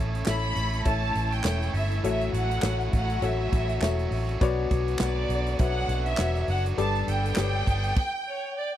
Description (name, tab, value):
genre	piano-driven pop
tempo	101 BPM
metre	4/4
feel	swing 56% on 16ths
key	B minor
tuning	A4 = 440 Hz
part	warm concert grand piano	accompaniment	0.0-8.0 s	G2 to F#5	-31 LUFS	left 8 dB	none
part	muted studio string section	sustained chords	0.0-8.0 s	D3 to B4	-39 LUFS	right 1 dB	none
part	biting overdriven guitar	riff	0.0-8.0 s	A2 to A4	-36 LUFS	right 6 dB	spring reverb
part	vintage muted fingered electric bass	bass	0.0-7.9 s	E1 to B1	-28 LUFS	right 1 dB	none
part	natural country drum kit	drums	0.1-8.1 s	crash cymbal, handclaps, hi-hat, kick drum, snare drum	-26 LUFS	right 1 dB	none
part	rich studio violin section	melody	0.3-8.8 s	C#5 to B5	-31 LUFS	right 1 dB	none
room	little or no reverb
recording	dry, close 1970s-style studio recording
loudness	-24 LUFS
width	side -12 dB against mid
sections	0.0-8.8 A section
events	stop 8.0-8.8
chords	0.0 A; 2.0 F#m7/A; 4.4 Bmadd9; 6.8 Gadd9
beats	0.27 0.86 1.45 | 2.04 2.64 3.23 3.82 | 4.41 5.00 5.60 6.19 | 6.78 7.37 7.96 8.56